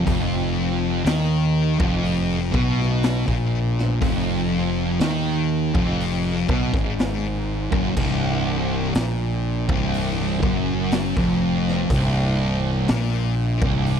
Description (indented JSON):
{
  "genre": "stoner and doom metal",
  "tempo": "61 BPM",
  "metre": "4/4",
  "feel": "straight",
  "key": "unclear",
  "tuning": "A4 = 440 Hz",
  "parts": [
    { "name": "thick fuzz guitar", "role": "riff", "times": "0.0-14.0 s", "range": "B#1 to Eb3", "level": "-21 LUFS", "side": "equal", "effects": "distortion" },
    { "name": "fuzz fingered electric bass", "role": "bass", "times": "0.0-14.0 s", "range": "B#0 to Eb2", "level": "-26 LUFS", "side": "equal", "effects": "overdrive" },
    { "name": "raw garage drum kit", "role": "drums", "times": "0.1-14.0 s", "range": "crash cymbal, hi-hat, kick drum, snare drum", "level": "-26 LUFS", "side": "equal", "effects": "none" }
  ],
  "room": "little or no reverb",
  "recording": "none",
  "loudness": "-19 LUFS",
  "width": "side -8 dB against mid",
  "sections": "0.0-14.0 A section",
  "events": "none",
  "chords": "0.1 Fm7b5; 8.0 F#maj7#11/B#",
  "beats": "| 0.07 1.06 2.04 3.03 | 4.02 5.00 5.99 6.98 | 7.96 8.95 9.93 10.91 | 11.90 12.88 13.87"
}